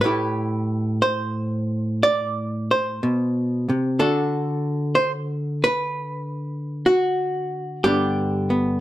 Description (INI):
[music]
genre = solo jazz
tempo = 62 BPM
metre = 4/4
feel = swing 69% on 8ths, rubato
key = unclear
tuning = A4 = 439 Hz
[part]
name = hollow-body jazz guitar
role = solo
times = 0.0-8.8 s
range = G2 to D5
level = -20 LUFS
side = equal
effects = none
[sound]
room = light reverb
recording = none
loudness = -20 LUFS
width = side -14 dB against mid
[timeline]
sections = 0.0-8.8 A section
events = none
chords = 0.0 Am9; 4.0 D; 7.9 G